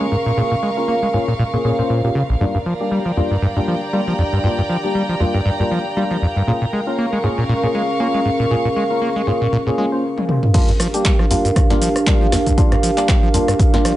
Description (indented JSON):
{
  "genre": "acid house",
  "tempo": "118 BPM",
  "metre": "4/4",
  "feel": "swing 56% on 16ths",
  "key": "G phrygian",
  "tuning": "A4 = 440 Hz",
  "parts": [
    { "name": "dark analog pad", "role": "sustained chords", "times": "0.0-14.0 s", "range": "Db4 to F5", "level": "-23 LUFS", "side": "right 1 dB", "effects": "chorus, sidechain pumping" },
    { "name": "acid bass, saw", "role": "riff", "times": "0.0-13.9 s", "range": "Bb1 to Bb3", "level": "-20 LUFS", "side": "equal", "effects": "overdrive, sidechain pumping" },
    { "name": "percussive organ stab", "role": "stabs", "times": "0.0-14.0 s", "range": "G3 to C5", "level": "-23 LUFS", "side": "left 2 dB", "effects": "lush chorus, vintage 12-bit sampler grit, dub echo" },
    { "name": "dark studio string section", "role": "texture", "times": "0.0-10.0 s", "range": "Bb4 to Db6", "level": "-23 LUFS", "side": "right 1 dB", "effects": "sidechain pumping" },
    { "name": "punchy analog drum machine", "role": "drums", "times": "10.2-14.0 s", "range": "crash cymbal, handclaps, hi-hat, rim click, shaker, snare drum, toms", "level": "-21 LUFS", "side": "equal", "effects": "none" },
    { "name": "electronic kick drum", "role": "drums", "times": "10.5-13.7 s", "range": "none", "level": "-16 LUFS", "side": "equal", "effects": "none" }
  ],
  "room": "moderate studio reverb, RT60 0.6 s",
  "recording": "nothing above 10.5 kHz",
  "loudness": "-15 LUFS",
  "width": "side -14 dB against mid",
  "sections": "0.0-10.5 A section; 10.5-14.0 B section",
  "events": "filter sweep on acid bass 0.0-10.5; drum fill 10.2-10.5; drop 10.5-14.0",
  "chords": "0.0 Bbm7; 2.4 Gm7; 6.5 Bbm7; 10.5 Gm7",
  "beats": "| 0.37 0.88 1.39 1.90 | 2.41 2.92 3.42 3.93 | 4.44 4.95 5.46 5.97 | 6.48 6.98 7.49 8.00 | 8.51 9.02 9.53 10.04 | 10.54 11.05 11.56 12.07 | 12.58 13.09 13.59"
}